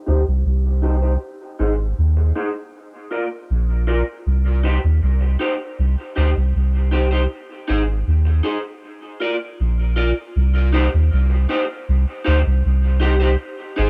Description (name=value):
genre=dub reggae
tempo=79 BPM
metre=4/4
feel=straight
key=C minor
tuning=A4 = 440 Hz
part: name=electric guitar through a small old amp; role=accompaniment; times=0.1-13.9 s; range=Eb4 to D5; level=-26 LUFS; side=equal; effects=lush chorus, low-pass filter, dub echo
part: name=soft dub sub bass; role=bass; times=0.1-13.9 s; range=Ab1 to Eb2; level=-19 LUFS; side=equal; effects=none
room=little or no reverb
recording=none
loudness=-19 LUFS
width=mono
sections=0.0-10.3 A section; 10.3-13.9 B section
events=filter sweep on clean electric guitar 0.0-10.3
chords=0.0 Cm; 1.2 Ab; 2.7 Bb; 4.3 Cm; 7.3 Ab; 8.8 Bb; 10.3 Cm; 13.4 Ab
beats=0.44 | 1.20 1.97 2.73 3.49 | 4.25 5.01 5.78 6.54 | 7.30 8.06 8.82 9.59 | 10.35 11.11 11.87 12.63 | 13.39